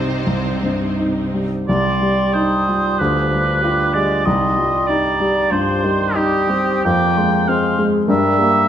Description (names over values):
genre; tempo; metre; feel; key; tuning
classical; 83-99 BPM; 4/4; rubato; C minor; A4 = 440 Hz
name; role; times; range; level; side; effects
warm grand piano; melody; 0.0-8.7 s; C2 to F4; -19 LUFS; equal; none
warm symphonic violin section; melody; 0.0-1.0 s; C5; -31 LUFS; left 2 dB; none
warm symphonic viola section; accompaniment; 0.0-1.4 s; C4 to Eb4; -26 LUFS; right 1 dB; none
warm symphonic cello section; bass; 0.0-1.5 s; C3; -27 LUFS; right 3 dB; none
concert flute; second line; 1.7-8.7 s; Bb5 to Eb6; -24 LUFS; equal; none
dark clarinet; second line; 1.7-8.7 s; D4 to Bb4; -26 LUFS; left 2 dB; none
warm oboe; second line; 1.7-8.7 s; G4 to G5; -19 LUFS; right 1 dB; none
warm bassoon; accompaniment; 1.7-8.7 s; Eb3 to C4; -24 LUFS; right 2 dB; none
room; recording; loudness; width
moderate scoring stage reverb, RT60 1.9 s; none; -15 LUFS; side -10 dB against mid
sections
0.0-1.7 A section; 1.7-8.7 B section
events
none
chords
0.0 Cm; 3.0 G7/D; 4.3 Cm; 6.8 Fm; 8.1 C7/G (rootless)